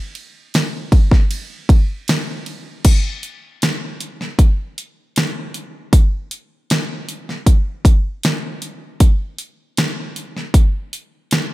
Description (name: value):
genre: pop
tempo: 78 BPM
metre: 4/4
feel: straight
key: none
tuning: none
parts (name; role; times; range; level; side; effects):
- pop drum kit; drums; 0.2-11.5 s; crash cymbal, hi-hat, kick drum, ride cymbal, snare drum; -14 LUFS; equal; none
room: light reverb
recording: none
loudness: -15 LUFS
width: side -18 dB against mid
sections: 0.0-2.9 A section; 2.9-11.5 B section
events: none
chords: none